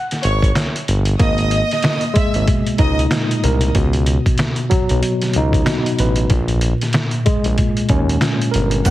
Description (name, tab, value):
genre	hip hop, boom-bap hip-hop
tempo	94 BPM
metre	4/4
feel	swing 58% on 16ths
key	unclear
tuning	A4 = 442 Hz
part	trip hop sampler-style drum kit	drums	0.1-8.9 s	hi-hat, kick drum, snare drum	-18 LUFS	equal	none
part	dark studio violin section	melody	0.2-3.0, 8.9 s	C#5 to F#6	-23 LUFS	right 2 dB	digital delay
part	smooth synth bass	bass	0.2-8.9 s	G1 to D#2	-18 LUFS	equal	none
part	tine electric piano	accompaniment	1.2-8.9 s	A#2 to B4	-19 LUFS	equal	overdrive, fast stereo tremolo
part	egg shaker	percussion	8.9 s	none	-28 LUFS	right 5 dB	none
room	little or no reverb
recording	heavily compressed radio sound, multiband compression, vinyl crackle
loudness	-14 LUFS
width	side -15 dB against mid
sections	0.0-8.9 A section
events	break 0.0-1.2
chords	0.0 G#madd9; 3.8 C#9sus4; 6.3 Gdim (rootless)